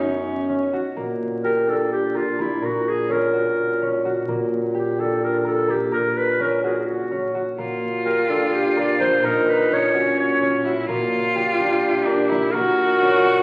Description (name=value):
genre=contemporary instrumental, chamber music in an uneven meter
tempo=254 BPM (eighths)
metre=7/8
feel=straight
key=unclear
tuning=A4 = 441 Hz
part: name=clear cello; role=second line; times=0.0-0.7, 7.6-13.4 s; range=C#4 to F#4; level=-25 LUFS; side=equal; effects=none
part: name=concert harp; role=arpeggios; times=0.0-13.4 s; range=A#3 to A#4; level=-26 LUFS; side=equal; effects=none
part: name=breathy bass clarinet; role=bass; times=0.0-13.4 s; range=F#2 to A#2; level=-30 LUFS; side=equal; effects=none
part: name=warm clarinet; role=melody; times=1.4-13.4 s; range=E4 to D5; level=-24 LUFS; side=equal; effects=none
room=wet recital hall reverb, RT60 1.5 s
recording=very old 78 rpm record, vinyl crackle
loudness=-21 LUFS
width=mono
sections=1.0-13.4 A section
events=none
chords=0.0 F#5; 1.0 A#6; 2.6 F#/A#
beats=0.02 0.25 0.49 0.72 | 0.96 1.20 1.44 1.67 1.91 2.15 2.38 | 2.62 2.85 3.09 3.33 3.56 3.80 4.04 | 4.27 4.51 4.75 4.98 5.22 5.46 5.69 | 5.93 6.17 6.40 6.64 6.88 7.11 7.35 | 7.58 7.82 8.06 8.29 8.53 8.77 9.00 | 9.24 9.48 9.71 9.95 10.19 10.42 10.66 | 10.89 11.13 11.37 11.60 11.84 12.07 12.31 | 12.55 12.78 13.02 13.26